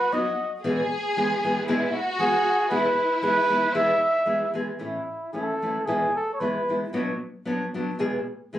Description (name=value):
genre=mexican folk, mariachi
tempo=114 BPM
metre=2/4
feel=swing 54% on 8ths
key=E major, A major from 4.8 s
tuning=A4 = 439 Hz
part: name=mellow trumpet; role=melody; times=0.0-6.8 s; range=E4 to E5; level=-23 LUFS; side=right 1 dB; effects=none
part: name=warm symphonic violin section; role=second line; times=0.0-4.6 s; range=E4 to G#4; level=-27 LUFS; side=equal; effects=none
part: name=nylon-string guitar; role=accompaniment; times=0.1-8.6 s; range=E2 to G#4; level=-27 LUFS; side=left 1 dB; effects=none
room=moderate studio ambience, RT60 0.5 s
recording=recorded on a phone in the room, club reverb, compression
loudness=-22 LUFS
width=side -12 dB against mid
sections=0.0-4.8 A section; 4.8-8.6 B section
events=none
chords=0.0 B; 0.6 E; 4.8 A; 5.9 E; 6.9 Bm; 8.0 E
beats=0.11 | 0.64 1.16 | 1.68 2.19 | 2.70 3.22 | 3.73 4.26 | 4.79 5.33 | 5.87 6.41 | 6.93 7.46 | 8.00 8.54